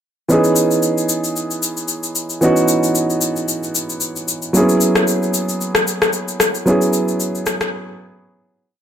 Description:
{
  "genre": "amapiano",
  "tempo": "113 BPM",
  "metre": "4/4",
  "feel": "swing 55% on 16ths",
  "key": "C# minor",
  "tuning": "A4 = 440 Hz",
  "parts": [
    { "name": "warm grand piano", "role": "accompaniment", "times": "0.3-8.8 s", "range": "E3 to G#4", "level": "-16 LUFS", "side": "right 1 dB", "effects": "none" },
    { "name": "electronic shaker and rim click", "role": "drums", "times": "0.3-7.7 s", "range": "none", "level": "-19 LUFS", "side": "left 3 dB", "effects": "none" }
  ],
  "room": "light reverb",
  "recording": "none",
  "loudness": "-15 LUFS",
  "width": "side -9 dB against mid",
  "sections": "0.3-8.8 breakdown",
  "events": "fade-out 6.7-8.8; break 7.7-8.8",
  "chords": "0.3 C#m9; 4.5 F#7sus4"
}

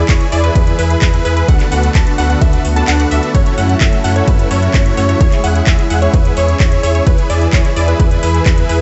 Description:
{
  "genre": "EDM, festival progressive house",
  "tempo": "129 BPM",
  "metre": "4/4",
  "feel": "straight",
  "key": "unclear",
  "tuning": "A4 = 441 Hz",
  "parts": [
    { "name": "lush unison pad", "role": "sustained chords", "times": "0.0-8.8 s", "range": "D3 to B4", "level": "-24 LUFS", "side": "equal", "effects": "chorus, sidechain pumping" },
    { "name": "unison pluck", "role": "arpeggios", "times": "0.0-8.8 s", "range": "B4 to A5", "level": "-23 LUFS", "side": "equal", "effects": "sidechain pumping, delay" },
    { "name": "dense compressed supersaw", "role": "riff", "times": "0.0-8.8 s", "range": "A3 to A5", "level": "-21 LUFS", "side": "equal", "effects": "sidechain pumping, delay" },
    { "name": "saturated sub bass", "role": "bass", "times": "0.0-8.8 s", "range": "D2 to F#2", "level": "-18 LUFS", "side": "equal", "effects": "sidechain pumping" },
    { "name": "electronic kick drum", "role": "drums", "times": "0.1-8.6 s", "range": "none", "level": "-15 LUFS", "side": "equal", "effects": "none" },
    { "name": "house drum kit", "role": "drums", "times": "0.1-8.8 s", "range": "handclaps, hi-hat, ride cymbal", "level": "-26 LUFS", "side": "equal", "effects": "overdrive" },
    { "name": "swell", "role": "sound effects", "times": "2.7-3.3 s", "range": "none", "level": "barely audible", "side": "none", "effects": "none" }
  ],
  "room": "moderate plate reverb, RT60 1.3 s, digital ambience",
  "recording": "dreamy mix soaked in reverb, nothing above 7.9 kHz",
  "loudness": "-13 LUFS",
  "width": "mono",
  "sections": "0.0-8.8 A section",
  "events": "kick drops out 2.9-3.3",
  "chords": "0.0 E; 1.5 D6; 3.3 F#m7; 5.2 C#m/E; 7.1 E"
}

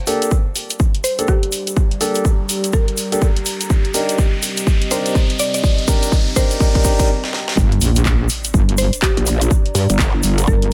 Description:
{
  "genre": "bass house",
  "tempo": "124 BPM",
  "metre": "4/4",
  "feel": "swing 61% on 16ths",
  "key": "G minor",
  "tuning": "A4 = 436 Hz",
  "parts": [
    { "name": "riser and sub drop", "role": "sound effects", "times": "0.0-9.5 s", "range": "none", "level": "-30 LUFS", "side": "equal", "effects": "none" },
    { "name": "deep dark ambient pad", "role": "texture", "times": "1.2-10.7 s", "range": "C4 to Bb5", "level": "-30 LUFS", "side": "equal", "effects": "chorus, built-in reverb, sidechain pumping" },
    { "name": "warm grand piano", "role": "stabs", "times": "0.1-7.1 s", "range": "Bb3 to Bb4", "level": "-25 LUFS", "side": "equal", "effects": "sidechain pumping, low-pass filter, tape echo" },
    { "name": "house drum kit", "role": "drums", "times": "0.1-10.7 s", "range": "handclaps, hi-hat, snare drum", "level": "-26 LUFS", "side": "equal", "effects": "high-pass filter on hats, high-pass filter on snare, high-pass filter on room" },
    { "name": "egg shaker", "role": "percussion", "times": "0.1-10.6 s", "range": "none", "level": "-28 LUFS", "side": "equal", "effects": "none" },
    { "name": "electronic kick drum", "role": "drums", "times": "0.3-10.6 s", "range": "none", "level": "-18 LUFS", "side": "equal", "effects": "none" },
    { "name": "mallet-like synth pluck", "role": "melody", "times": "1.0-10.7 s", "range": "G4 to D5", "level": "-27 LUFS", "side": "equal", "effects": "chorus, tape echo" },
    { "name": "metallic wobble bass", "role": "bass", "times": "7.6-10.7 s", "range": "G1 to G2", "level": "-18 LUFS", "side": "equal", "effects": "chorus, sidechain pumping" },
    { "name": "growl bass", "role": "bass", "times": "9.2-10.5 s", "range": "G1 to Bb1", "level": "-18 LUFS", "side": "equal", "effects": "chorus, overdrive, sidechain pumping" }
  ],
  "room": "little or no reverb",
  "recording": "none",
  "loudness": "-17 LUFS",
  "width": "mono",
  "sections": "0.0-7.6 A section; 7.6-10.7 B section",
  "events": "build-up 0.0-7.6; riser 0.0-7.1; drum fill 3.7-7.1, 7.2-7.6; stop 7.1-7.6; drop 7.6-10.7; impact 7.6-9.5",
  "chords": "0.0 Gmadd9; 3.7 Cm7; 7.6 Gm"
}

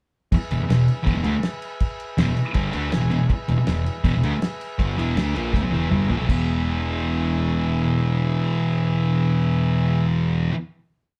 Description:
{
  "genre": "garage rock duo or trio",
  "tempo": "160 BPM",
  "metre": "4/4",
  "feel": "straight",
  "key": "E mixolydian",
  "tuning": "A4 = 438 Hz",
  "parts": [
    { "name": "combo organ", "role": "sustained chords", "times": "0.3-10.1 s", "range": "G#4 to G#5", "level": "-36 LUFS", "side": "equal", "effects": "none" },
    { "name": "thick fuzz guitar", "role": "riff", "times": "0.3-10.5 s", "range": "E2 to D4", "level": "-23 LUFS", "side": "equal", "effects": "distortion" },
    { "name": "fuzz picked electric bass", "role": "bass", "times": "0.3-10.5 s", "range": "E1 to D2", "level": "-31 LUFS", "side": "equal", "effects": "overdrive" },
    { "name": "cloth-damped thuddy drum kit", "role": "drums", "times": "0.3-6.4 s", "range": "crash cymbal, kick drum, snare drum, toms", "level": "-28 LUFS", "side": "equal", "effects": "none" }
  ],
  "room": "light reverb",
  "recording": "band playing live in one room",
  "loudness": "-22 LUFS",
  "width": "mono",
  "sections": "0.3-6.3 riff; 6.3-9.3 final chord",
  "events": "transistor combo organ fill 2.6-3.3; drum fill 5.5-6.3",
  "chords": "0.3 E"
}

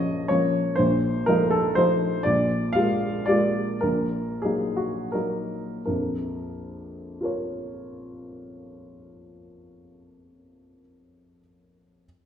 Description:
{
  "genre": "classical, romantic triple-time dance for piano with dotted rhythms",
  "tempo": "76-126 BPM",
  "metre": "3/4",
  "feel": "rubato",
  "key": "Bb minor",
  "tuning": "A4 = 440 Hz",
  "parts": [
    { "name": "warm baby grand piano", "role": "solo", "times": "0.0-12.1 s", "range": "Bb1 to F5", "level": "-23 LUFS", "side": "equal", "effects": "none" }
  ],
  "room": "wet recital hall reverb, RT60 1.6 s",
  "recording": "heard from further back in the room",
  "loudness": "-22 LUFS",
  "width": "side -9 dB against mid",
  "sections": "0.0-5.9 A section; 5.9-9.9 B section",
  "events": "slowing down 1.5-5.9",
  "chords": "0.0 Bbm; 0.8 F7/Bb; 2.2 Bb7; 3.8 Ebm/Bb; 5.9 Bbm"
}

